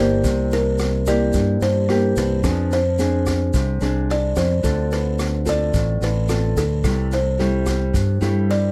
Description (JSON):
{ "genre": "bossa nova", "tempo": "109 BPM", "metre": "4/4", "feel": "straight", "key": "C major", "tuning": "A4 = 441 Hz", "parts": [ { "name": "buzzing kalimba", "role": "melody", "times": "0.0-8.7 s", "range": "A4 to D5", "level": "-26 LUFS", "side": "equal", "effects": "none" }, { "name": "nylon-string guitar", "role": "accompaniment", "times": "0.0-8.7 s", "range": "G2 to A4", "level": "-25 LUFS", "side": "equal", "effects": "none" }, { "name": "fingered electric bass", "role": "bass", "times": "0.0-8.7 s", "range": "G1 to G2", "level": "-24 LUFS", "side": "equal", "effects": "none" }, { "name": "open jazz drum kit", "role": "drums", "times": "0.2-8.6 s", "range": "kick drum, rim click, snare drum", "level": "-29 LUFS", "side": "equal", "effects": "none" }, { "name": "tube shaker", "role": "percussion", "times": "0.2-8.5 s", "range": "none", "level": "-41 LUFS", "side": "equal", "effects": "none" } ], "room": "light reverb", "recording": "close, detailed microphones", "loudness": "-20 LUFS", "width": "mono", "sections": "0.0-8.7 A section", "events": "none", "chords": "0.2 C7; 2.4 Fm6; 4.6 Dm7; 6.8 C6" }